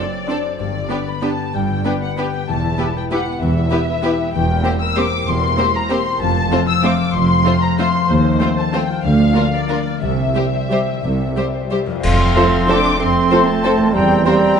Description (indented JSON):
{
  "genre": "classical, orchestral ballroom waltz",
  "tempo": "168-207 BPM",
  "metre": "3/4",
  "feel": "rubato",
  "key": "F major from 4.3 s",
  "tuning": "A4 = 440 Hz",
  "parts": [
    { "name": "muted symphonic violin section", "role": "melody", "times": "0.0-14.6 s", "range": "C5 to E6", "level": "-22 LUFS", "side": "left 4 dB", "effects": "none" },
    { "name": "muted symphonic violin section", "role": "second line", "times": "0.0-14.3 s", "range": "F4 to D5", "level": "-26 LUFS", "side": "left 2 dB", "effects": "none" },
    { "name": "muted symphonic viola section", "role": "accompaniment", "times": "0.0-14.6 s", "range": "G3 to G4", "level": "-24 LUFS", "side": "right 2 dB", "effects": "none" },
    { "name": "concert harp", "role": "arpeggios", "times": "0.0-14.6 s", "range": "E2 to F5", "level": "-22 LUFS", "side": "left 7 dB", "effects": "none" },
    { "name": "muted studio cello section", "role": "bass", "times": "0.6-14.6 s", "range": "C2 to D4", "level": "-21 LUFS", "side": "right 3 dB", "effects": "none" },
    { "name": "muted symphonic double bass section", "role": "bass", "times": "0.6-14.2 s", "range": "E1 to F2", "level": "-23 LUFS", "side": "right 4 dB", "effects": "none" },
    { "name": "cymbal swell, clash cymbals and concert bass drum", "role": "percussion", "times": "10.0-12.6 s", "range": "none", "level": "-24 LUFS", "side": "equal", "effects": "none" },
    { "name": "bright silver concert flute", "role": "second line", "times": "12.0-14.6 s", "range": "Bb5 to C6", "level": "-22 LUFS", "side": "left 1 dB", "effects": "none" },
    { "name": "clear clarinet", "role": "second line", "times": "12.0-14.6 s", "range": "C4", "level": "-23 LUFS", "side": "equal", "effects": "none" },
    { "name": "dark cor anglais", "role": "second line", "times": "12.0-14.6 s", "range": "C5", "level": "-24 LUFS", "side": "equal", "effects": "none" },
    { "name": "mellow bassoon", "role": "accompaniment", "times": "12.0-14.6 s", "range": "G3 to A3", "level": "-20 LUFS", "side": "right 3 dB", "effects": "none" },
    { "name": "mellow French horn section", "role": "sustained chords", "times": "12.4-14.4 s", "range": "A3 to A4", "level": "-24 LUFS", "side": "left 2 dB", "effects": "none" },
    { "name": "dark trumpet", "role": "stabs", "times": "12.4-14.4 s", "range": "C5", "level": "-23 LUFS", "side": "right 3 dB", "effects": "none" }
  ],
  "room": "moderate scoring stage reverb, RT60 1.6 s",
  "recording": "nothing above 10.9 kHz",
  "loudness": "-14 LUFS",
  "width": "side -7 dB against mid",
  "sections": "0.0-12.0 A section; 12.0-14.6 B section",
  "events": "band accent 12.0-12.4",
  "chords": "0.0 D7/F#; 0.6 G; 2.5 Em; 4.3 C7/E; 6.2 F; 8.1 F7/Eb; 9.0 Bb/D; 10.0 C; 12.0 F; 14.0 C7/E"
}